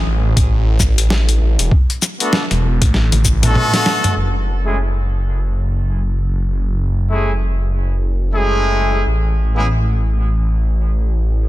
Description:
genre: glitch hop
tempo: 98 BPM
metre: 4/4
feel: swing 60% on 16ths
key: F# minor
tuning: A4 = 436 Hz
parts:
  - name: phased detuned saw bass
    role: bass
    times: 0.0-11.5 s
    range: E1 to A1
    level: -16 LUFS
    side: equal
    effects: phaser, tube saturation
  - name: boom bap sampler-style drum kit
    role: drums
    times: 0.4-4.1 s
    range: hi-hat, shaker, snare drum, toms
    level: -18 LUFS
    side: left 1 dB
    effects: none
  - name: electronic kick drum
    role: drums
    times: 0.4-3.4 s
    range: none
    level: -15 LUFS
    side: equal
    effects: none
  - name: clear horn section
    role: stabs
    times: 2.2-9.7 s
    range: G#3 to A4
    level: -21 LUFS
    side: equal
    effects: sidechain pumping, low-pass filter, dub echo
room: little or no reverb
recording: dense, heavily limited modern master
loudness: -14 LUFS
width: side -16 dB against mid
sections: 0.0-4.2 A section; 4.2-11.5 B section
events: drop 0.0-4.2; drum fill 2.9-4.2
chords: 0.0 A5; 1.7 E7sus4; 4.2 F#m7; 9.1 N.C.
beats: 0.49 1.10 | 1.72 2.33 2.94 3.55 | 4.17 4.78 5.39 6.00 | 6.61 7.23 7.84 8.45 | 9.06 9.68 10.29 10.90

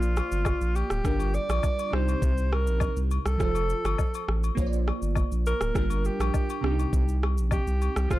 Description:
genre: afrobeats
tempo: 102 BPM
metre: 4/4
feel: straight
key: unclear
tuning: A4 = 441 Hz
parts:
  - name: warm alto saxophone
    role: melody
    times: 0.0-8.2 s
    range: F4 to D5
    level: -32 LUFS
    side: equal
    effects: plate reverb, tape echo
  - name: glassy digital keys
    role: accompaniment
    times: 0.0-8.2 s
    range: C3 to D5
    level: -33 LUFS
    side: right 2 dB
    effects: chorus, plate reverb
  - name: warm sub bass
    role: bass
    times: 0.0-8.2 s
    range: D1 to C2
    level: -26 LUFS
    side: equal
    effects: none
  - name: afro-pop drum kit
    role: drums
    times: 0.0-8.2 s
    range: kick drum, rim click, shaker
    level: -28 LUFS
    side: equal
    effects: none
  - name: agogo bells and woodblock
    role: percussion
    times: 0.2-8.0 s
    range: none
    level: -37 LUFS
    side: left 12 dB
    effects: none
room: little or no reverb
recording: dark, warm production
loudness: -24 LUFS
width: side -16 dB against mid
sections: 0.0-8.2 A section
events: none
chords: 0.0 Bbadd9; 1.0 Gm7; 1.9 Cm; 3.4 F; 4.6 Bbadd9; 5.8 Gm7; 6.6 Cm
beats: 0.46 | 1.05 1.63 2.22 2.81 | 3.40 3.99 4.58 5.16 | 5.75 6.34 6.93 7.52 | 8.10

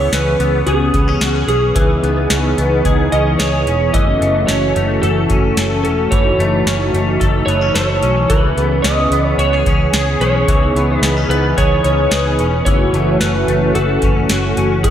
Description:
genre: dream pop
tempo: 110 BPM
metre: 4/4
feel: straight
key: C# minor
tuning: A4 = 441 Hz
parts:
  - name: electric slide guitar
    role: melody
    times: 0.0-14.9 s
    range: G#4 to D#5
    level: -18 LUFS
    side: right 1 dB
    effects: wide subtle chorus, tape echo
  - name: warm analog pad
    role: sustained chords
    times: 0.0-14.9 s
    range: D#3 to G#4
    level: -19 LUFS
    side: equal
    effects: chorus
  - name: direct-recorded clean electric guitar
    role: arpeggios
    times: 0.0-14.9 s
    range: D#3 to A4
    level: -22 LUFS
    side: left 3 dB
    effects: ensemble chorus, tape echo
  - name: vintage muted fingered electric bass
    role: bass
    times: 0.0-14.9 s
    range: E1 to C#2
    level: -18 LUFS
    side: equal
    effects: none
  - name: booming analog drum machine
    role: drums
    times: 0.1-14.9 s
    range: hi-hat, kick drum, snare drum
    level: -19 LUFS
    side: equal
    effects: none
room: wet lush hall reverb, RT60 1.7 s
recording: dreamy mix soaked in reverb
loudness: -12 LUFS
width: side -10 dB against mid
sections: 0.0-14.9 A section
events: none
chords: 0.0 C#m7; 3.9 F#m7; 8.3 C#m7; 12.7 F#m7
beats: 0.12 0.67 1.21 | 1.76 2.30 2.85 3.39 | 3.94 4.48 5.03 5.57 | 6.12 6.67 7.21 7.76 | 8.30 8.85 9.39 9.94 | 10.48 11.03 11.57 12.12 | 12.66 13.21 13.76 14.30 | 14.85

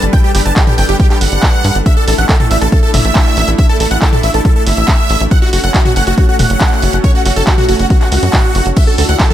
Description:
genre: uplifting trance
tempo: 139 BPM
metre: 4/4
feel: straight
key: unclear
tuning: A4 = 442 Hz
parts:
  - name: big supersaw lead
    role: melody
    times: 0.0-9.3 s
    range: F#4 to A5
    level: -16 LUFS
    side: right 1 dB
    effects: phaser, sidechain pumping, tape echo
  - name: lush unison pad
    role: sustained chords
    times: 0.0-9.3 s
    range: D3 to B4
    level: -19 LUFS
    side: equal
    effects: chorus, sidechain pumping
  - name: tight sequencer bass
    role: bass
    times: 0.0-9.2 s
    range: E1 to G2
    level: -14 LUFS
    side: equal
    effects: sidechain pumping
  - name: punchy analog drum machine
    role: drums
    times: 0.0-9.3 s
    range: crash cymbal, handclaps, hi-hat, ride cymbal, toms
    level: -18 LUFS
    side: equal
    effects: sidechain pumping on hats, sidechain pumping on cymbals, sidechain pumping on toms
  - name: electronic kick drum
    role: drums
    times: 0.1-9.3 s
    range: none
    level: -11 LUFS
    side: equal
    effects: none
room: little or no reverb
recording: none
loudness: -9 LUFS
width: side -12 dB against mid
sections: 0.0-9.3 A section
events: none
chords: 0.0 Gadd9; 1.9 Asus4; 5.3 F#m; 8.8 Dadd9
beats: | 0.13 0.56 1.00 1.43 | 1.86 2.29 2.72 3.15 | 3.59 4.02 4.45 4.88 | 5.31 5.75 6.18 6.61 | 7.04 7.47 7.90 8.34 | 8.77 9.20

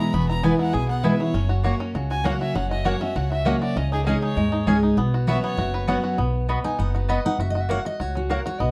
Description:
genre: bluegrass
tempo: 198 BPM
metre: 4/4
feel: straight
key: B major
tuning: A4 = 441 Hz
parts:
  - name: clear fiddle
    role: second line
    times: 0.0-5.9 s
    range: G#4 to B5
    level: -33 LUFS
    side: equal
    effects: tape echo
  - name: picked steel-string acoustic guitar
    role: accompaniment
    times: 0.0-8.7 s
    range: E2 to G#5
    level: -26 LUFS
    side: equal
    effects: none
  - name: bluegrass banjo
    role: arpeggios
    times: 0.0-8.7 s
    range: G#3 to B4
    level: -32 LUFS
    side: equal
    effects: none
  - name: upright bass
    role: bass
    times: 0.1-8.7 s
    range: E1 to D#2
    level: -28 LUFS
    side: equal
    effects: none
  - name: mandolin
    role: stabs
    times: 0.4-8.4 s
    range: A#3 to B5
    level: -29 LUFS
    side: equal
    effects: none
room: moderate studio ambience, RT60 0.5 s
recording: dark, warm production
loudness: -23 LUFS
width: mono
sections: 0.0-6.2 A section; 6.2-8.7 A section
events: fiddle solo 0.0-6.2; steel-string acoustic guitar solo 6.2-8.7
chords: 0.0 E; 1.3 F#; 3.8 C#sus2; 5.0 Bsus2; 6.2 B; 7.4 F#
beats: | 0.13 0.44 0.74 1.04 | 1.34 1.65 1.95 2.25 | 2.55 2.85 3.16 3.46 | 3.76 4.07 4.37 4.67 | 4.97 5.28 5.58 5.88 | 6.18 6.49 6.79 7.09 | 7.39 7.70 8.00 8.30 | 8.61

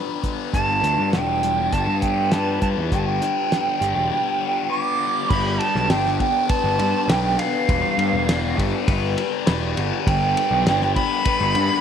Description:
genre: psychedelic rock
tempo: 101 BPM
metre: 4/4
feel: straight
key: G mixolydian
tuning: A4 = 439 Hz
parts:
  - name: combo organ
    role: sustained chords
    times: 0.0-11.8 s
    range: B3 to B4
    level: -33 LUFS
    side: right 12 dB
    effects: lush chorus
  - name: thick fuzz guitar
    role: riff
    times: 0.0-11.8 s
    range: G3 to B4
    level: -25 LUFS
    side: left 13 dB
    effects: distortion, phaser
  - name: cloth-damped thuddy drum kit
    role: drums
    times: 0.2-11.7 s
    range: crash cymbal, hi-hat, kick drum, ride cymbal, snare drum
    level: -25 LUFS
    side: equal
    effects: none
  - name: bright reedy silver concert flute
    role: melody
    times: 0.5-11.8 s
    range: F5 to D6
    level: -22 LUFS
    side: right 3 dB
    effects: slapback echo
  - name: fuzz picked electric bass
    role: bass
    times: 0.5-11.7 s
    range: E1 to G2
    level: -24 LUFS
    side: equal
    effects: overdrive
room: light reverb, studio reverb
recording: 1960s-style stereo with parts hard left and right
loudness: -18 LUFS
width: side -8 dB against mid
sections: 0.0-5.3 A section; 5.3-11.8 B section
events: none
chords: 0.0 G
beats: | 0.53 1.13 1.73 2.32 | 2.92 3.52 4.11 4.71 | 5.30 5.90 6.50 7.09 | 7.69 8.28 8.88 9.47 | 10.07 10.66 11.26

